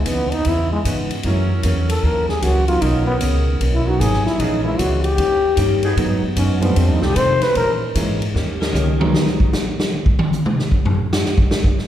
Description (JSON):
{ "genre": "jazz, big band swing", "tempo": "152 BPM", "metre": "4/4", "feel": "swing 65% on 8ths", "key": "G# minor", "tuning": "A4 = 442 Hz", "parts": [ { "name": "growling trombone", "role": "melody", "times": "0.0-7.7 s", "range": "G#3 to C5", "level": "-20 LUFS", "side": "left 2 dB", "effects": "none" }, { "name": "upright bass", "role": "bass", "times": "0.0-9.1 s", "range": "G#1 to C3", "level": "-19 LUFS", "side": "equal", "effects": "none" }, { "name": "archtop guitar, miked and amplified", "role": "accompaniment", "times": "0.1-9.0 s", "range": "F2 to G4", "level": "-26 LUFS", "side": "left 1 dB", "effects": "none" }, { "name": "swinging big-band drum kit", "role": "drums", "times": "0.1-11.9 s", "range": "hi-hat, kick drum, ride cymbal, snare drum, toms", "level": "-21 LUFS", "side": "equal", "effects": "none" }, { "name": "warm saxophone section", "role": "sustained chords", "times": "0.8-9.1 s", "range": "D#3 to B4", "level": "-29 LUFS", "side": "equal", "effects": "none" }, { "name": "warm grand piano", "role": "accompaniment", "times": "1.2-9.5 s", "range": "D#3 to E4", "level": "-25 LUFS", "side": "right 2 dB", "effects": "none" } ], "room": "wet scoring stage reverb, RT60 1.6 s", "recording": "heard from further back in the room", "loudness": "-15 LUFS", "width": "side -11 dB against mid", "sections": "0.0-9.1 A section; 9.1-11.9 A section", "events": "trombone solo 0.0-9.1; drum fill 8.3-9.1; drum solo 9.1-11.9", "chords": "0.0 C#m9; 1.2 F#7; 2.8 Bmaj9; 4.4 A#m7b5; 5.2 D#7; 6.0 G#m7; 6.8 F7; 7.5 A#m7b5; 8.3 D#7; 9.1 G#m9; 10.7 N.C.", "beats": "0.05 0.44 0.84 | 1.23 1.63 2.02 2.42 | 2.81 3.20 3.60 3.99 | 4.39 4.78 5.18 5.57 | 5.96 6.36 6.75 7.15 | 7.55 7.94 8.34 8.73 | 9.13 9.53 9.92 10.32 | 10.71 11.11 11.51" }